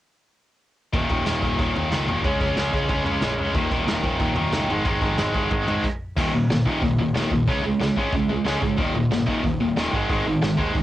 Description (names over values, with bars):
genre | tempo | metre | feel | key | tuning
punk rock | 184 BPM | 4/4 | straight | unclear | A4 = 441 Hz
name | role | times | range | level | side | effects
tight distorted guitar | riff | 0.9-10.8 s | Eb2 to Db4 | -21 LUFS | equal | distortion
fuzz picked electric bass | bass | 0.9-10.8 s | Eb1 to Ab2 | -30 LUFS | equal | overdrive
vintage brush drum kit | drums | 0.9-10.8 s | crash cymbal, hi-hat, kick drum, snare drum, toms | -27 LUFS | equal | cassette tape
room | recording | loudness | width
light reverb | home recording on cassette | -20 LUFS | side -14 dB against mid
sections
0.9-6.2 A section; 6.2-10.8 B section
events
stop 5.8-6.2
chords
0.9 Eb5; 2.2 Db5; 3.6 Eb5; 4.7 Ab5; 6.2 Eb5; 7.5 Db5; 8.8 Eb5; 9.9 Ab5